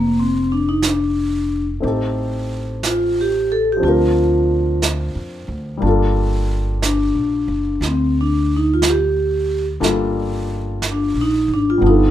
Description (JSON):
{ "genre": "jazz ballad", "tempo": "60 BPM", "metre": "4/4", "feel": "swing 67% on 8ths", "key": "G minor", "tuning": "A4 = 441 Hz", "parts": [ { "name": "vibraphone with medium mallets", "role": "melody", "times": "0.0-12.1 s", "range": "Bb3 to A4", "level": "-17 LUFS", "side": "equal", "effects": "none" }, { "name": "warm grand piano", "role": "accompaniment", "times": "0.0-12.1 s", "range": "F3 to Bb4", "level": "-22 LUFS", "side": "left 3 dB", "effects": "none" }, { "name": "upright bass", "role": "bass", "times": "0.0-12.1 s", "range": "F1 to F2", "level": "-21 LUFS", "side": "right 1 dB", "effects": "none" }, { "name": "vintage brush drum kit", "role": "drums", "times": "0.8-12.1 s", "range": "brushed snare drum, hi-hat, snare drum", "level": "-25 LUFS", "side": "right 5 dB", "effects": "none" } ], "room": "little or no reverb", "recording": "minimal, uncompressed stereo recording", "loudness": "-16 LUFS", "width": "side -11 dB against mid", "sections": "0.0-12.1 A section", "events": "none", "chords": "0.0 Bbmaj9; 1.8 Am7b5; 3.8 Bbadd9/D; 5.8 Gm7", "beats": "0.82 | 1.83 2.83 3.83 4.82 | 5.82 6.81 7.81 8.80 | 9.80 10.81 11.82" }